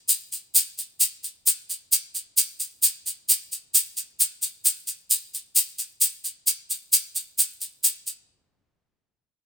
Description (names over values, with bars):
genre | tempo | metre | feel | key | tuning
bossa nova | 132 BPM | 4/4 | straight | none | none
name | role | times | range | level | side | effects
egg shaker | percussion | 0.1-8.3 s | none | -18 LUFS | equal | none
room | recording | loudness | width
little or no reverb | minimal, uncompressed stereo recording | -20 LUFS | side -10 dB against mid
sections
0.0-1.0 A section; 1.0-8.3 B section; 8.3-9.5 C section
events
none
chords
none